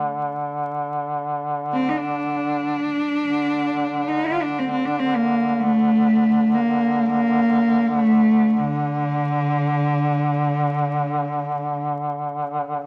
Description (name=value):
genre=caucasian folk, Caucasian lament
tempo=free time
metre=none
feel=none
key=unclear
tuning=A4 = 439 Hz
part: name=clear duduk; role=drone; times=0.0-12.9 s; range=D3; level=-27 LUFS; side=equal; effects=none
part: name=warm cello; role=melody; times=1.7-11.8 s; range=D3 to F4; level=-22 LUFS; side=equal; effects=none
room=moderate studio reverb, RT60 0.7 s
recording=vinyl crackle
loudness=-21 LUFS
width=mono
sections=0.0-12.9 A section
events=none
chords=none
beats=free time